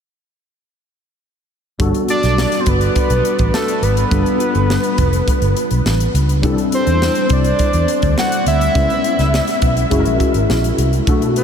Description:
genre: polished 1980s jazz-funk pop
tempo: 103 BPM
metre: 4/4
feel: straight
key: G major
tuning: A4 = 440 Hz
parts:
  - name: tine electric piano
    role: accompaniment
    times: 1.8-11.4 s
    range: B2 to B4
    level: -19 LUFS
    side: left 2 dB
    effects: ensemble chorus
  - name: vintage muted fingered electric bass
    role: bass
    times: 1.8-11.2 s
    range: F1 to E2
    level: -17 LUFS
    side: right 1 dB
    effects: none
  - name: crisp fusion drum kit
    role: drums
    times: 1.8-11.4 s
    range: hi-hat, kick drum, snare drum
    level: -20 LUFS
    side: equal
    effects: none
  - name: fat analog lead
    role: melody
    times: 2.1-11.4 s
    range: A4 to F#5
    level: -19 LUFS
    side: right 1 dB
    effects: ping-pong delay
room: wet huge ambient reverb, RT60 7.6 s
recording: dreamy mix soaked in reverb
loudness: -13 LUFS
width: side -7 dB against mid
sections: 1.8-11.4 A section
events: none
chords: 1.8 Gmaj7; 4.1 G7; 6.4 C69; 8.8 C#m7; 9.9 F#7

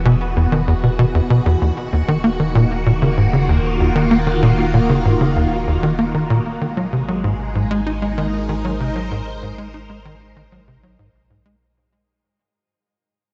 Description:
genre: ambient, sequencer-driven space music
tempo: 96 BPM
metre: 4/4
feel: straight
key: unclear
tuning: A4 = 440 Hz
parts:
  - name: phased string machine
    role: sustained chords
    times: 0.0-11.6 s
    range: Eb3 to C5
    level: -24 LUFS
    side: equal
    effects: ensemble chorus, phaser, shimmer reverb
  - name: warm sub bass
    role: bass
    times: 0.0-11.6 s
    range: Eb1 to Ab1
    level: -28 LUFS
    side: equal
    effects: none
  - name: tight sequencer bass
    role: riff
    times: 0.1-11.6 s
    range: Eb2 to Eb4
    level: -19 LUFS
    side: equal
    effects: subtle chorus, tape echo
room: moderate huge ambient reverb, RT60 6.9 s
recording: cassette tape, nothing above 7.8 kHz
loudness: -17 LUFS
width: mono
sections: 0.0-11.6 A section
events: fade-in on string machine 0.0-11.6; fade-out 4.9-11.6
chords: 0.0 Eadd9; 1.6 Ebm; 6.6 Ab

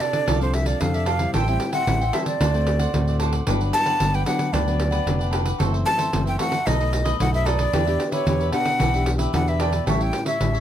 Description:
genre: samba and choro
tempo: 112 BPM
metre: 4/4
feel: straight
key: unclear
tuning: A4 = 440 Hz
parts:
  - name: breathy jazz flute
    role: melody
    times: 0.0-10.6 s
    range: C5 to A5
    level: -25 LUFS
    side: right 1 dB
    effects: none
  - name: cavaquinho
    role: accompaniment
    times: 0.0-10.6 s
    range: D4 to G5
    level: -29 LUFS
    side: right 1 dB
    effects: none
  - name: nylon-string guitar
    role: accompaniment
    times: 0.0-10.6 s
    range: F#2 to A4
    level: -28 LUFS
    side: left 3 dB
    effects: none
  - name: pandeiro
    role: percussion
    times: 0.0-10.6 s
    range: none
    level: -27 LUFS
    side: right 1 dB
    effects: none
  - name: fingered electric bass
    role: bass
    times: 0.3-10.6 s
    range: F1 to F2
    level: -23 LUFS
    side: equal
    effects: none
room: little or no reverb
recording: close, detailed microphones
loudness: -19 LUFS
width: side -10 dB against mid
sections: 0.0-10.6 A section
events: none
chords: 0.0 F6; 1.3 Am7; 2.4 D7; 3.5 Gmaj7; 5.6 F#m7b5; 6.7 B7; 7.7 Em7; 9.9 A7

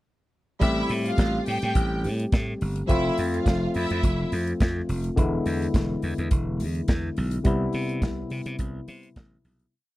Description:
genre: disco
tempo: 105 BPM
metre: 4/4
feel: straight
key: A minor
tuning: A4 = 440 Hz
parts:
  - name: clear studio string section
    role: second line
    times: 0.6-4.3 s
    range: E4 to G5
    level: -30 LUFS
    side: right 1 dB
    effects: none
  - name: barky tine electric piano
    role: accompaniment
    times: 0.6-9.8 s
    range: C3 to G4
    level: -28 LUFS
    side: left 2 dB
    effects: overdrive
  - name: slap bass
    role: bass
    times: 0.6-9.6 s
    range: E1 to C3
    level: -28 LUFS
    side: equal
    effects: none
  - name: modern studio drum kit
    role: drums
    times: 0.6-9.7 s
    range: hi-hat, kick drum, snare drum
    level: -25 LUFS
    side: equal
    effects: none
room: little or no reverb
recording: dry, close 1970s-style studio recording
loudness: -23 LUFS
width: side -17 dB against mid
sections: 0.6-9.7 verse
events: fade-out 7.5-9.7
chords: 0.6 Am7; 2.9 Fmaj7; 5.2 E7; 7.5 Cmaj7

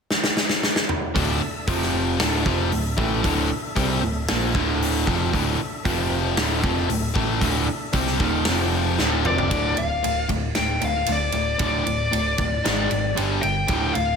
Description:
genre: hard rock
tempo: 115 BPM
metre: 4/4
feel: straight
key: D minor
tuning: A4 = 440 Hz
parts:
  - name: big rock drum kit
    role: drums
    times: 0.1-14.1 s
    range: hi-hat, kick drum, ride cymbal, snare drum, toms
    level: -25 LUFS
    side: equal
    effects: none
  - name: distorted electric guitar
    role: riff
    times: 1.1-14.2 s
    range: D2 to C4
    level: -26 LUFS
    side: left 10 dB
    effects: overdrive
  - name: overdriven semi-hollow guitar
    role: riff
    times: 1.1-14.2 s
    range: D2 to C4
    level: -27 LUFS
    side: right 10 dB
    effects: none
  - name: percussive tonewheel organ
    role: sustained chords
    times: 1.2-9.5 s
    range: F3 to E5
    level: -34 LUFS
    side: equal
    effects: overdrive, fast rotary speaker
  - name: overdriven picked electric bass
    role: bass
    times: 1.2-14.2 s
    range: D1 to C2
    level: -27 LUFS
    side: equal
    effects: none
  - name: bluesy overdriven lead guitar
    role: melody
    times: 9.3-14.2 s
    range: D5 to G5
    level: -24 LUFS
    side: left 3 dB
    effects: distortion
room: moderate large studio reverb, RT60 1.3 s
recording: none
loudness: -20 LUFS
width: side -6 dB against mid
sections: 0.0-1.1 A section; 1.1-9.5 B section; 9.5-14.2 C section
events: drum fill 0.1-1.1, 9.0-9.5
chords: 0.0 N.C.; 1.1 D5; 1.7 F5; 2.2 Dm; 5.9 F5; 6.4 Dm; 8.5 F5; 9.0 Dm; 12.6 G#5; 13.2 G5

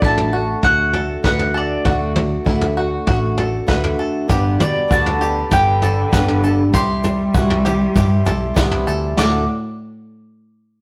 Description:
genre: indie folk with a building arrangement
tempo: 98 BPM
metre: 4/4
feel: straight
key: D major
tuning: A4 = 440 Hz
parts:
  - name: mandolin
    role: melody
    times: 0.0-9.5 s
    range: D5 to D6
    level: -22 LUFS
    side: equal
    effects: none
  - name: picked old ladder-braced acoustic guitar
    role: accompaniment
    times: 0.0-9.4 s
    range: G2 to G4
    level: -24 LUFS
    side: equal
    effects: none
  - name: bluegrass banjo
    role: arpeggios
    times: 0.0-9.5 s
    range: B3 to B4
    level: -28 LUFS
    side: equal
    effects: none
  - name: hollow-body short-scale fingered electric bass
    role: bass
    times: 0.0-9.5 s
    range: G1 to G2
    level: -24 LUFS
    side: equal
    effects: none
  - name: vintage brush drum kit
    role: drums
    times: 0.0-9.3 s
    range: crash cymbal, kick drum, snare drum, toms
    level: -22 LUFS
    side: equal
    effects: none
  - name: dark brass ensemble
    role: sustained chords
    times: 4.3-9.5 s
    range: D3 to C6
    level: -34 LUFS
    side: equal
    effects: none
  - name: egg shaker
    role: percussion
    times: 4.3-9.5 s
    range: none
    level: -44 LUFS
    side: equal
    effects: none
  - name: warm cello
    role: second line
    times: 4.6-9.5 s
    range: A2 to G3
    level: -25 LUFS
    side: equal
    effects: none
room: moderate stone room reverb, RT60 1.0 s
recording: rough rehearsal-room recording, tube saturation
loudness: -17 LUFS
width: mono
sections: 0.0-9.2 A section; 9.2-10.8 B section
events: none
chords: 0.0 D; 4.3 G; 6.7 C; 9.2 D

